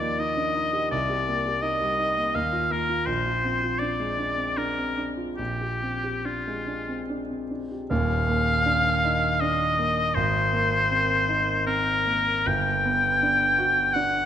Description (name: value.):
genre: classical, impressionist duo for oboe and grand piano.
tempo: 69-85 BPM.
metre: 3/4.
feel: rubato.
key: Eb major.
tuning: A4 = 440 Hz.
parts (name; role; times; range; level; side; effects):
bright oboe; melody; 0.0-14.3 s; F4 to G5; -24 LUFS; left 1 dB; none.
warm concert grand piano; accompaniment; 0.0-14.3 s; Eb1 to G4; -27 LUFS; right 1 dB; none.
room: moderate scoring stage reverb, RT60 1.9 s.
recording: none.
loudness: -22 LUFS.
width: side -9 dB against mid.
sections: 0.0-7.9 A section; 7.9-14.3 B section.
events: none.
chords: 0.0 Ebadd9; 0.9 Cm9; 2.4 Ebsus2; 3.1 Bb9; 5.4 Bb13; 7.9 Ebsus2; 10.2 Abadd9; 12.5 Gmaj7.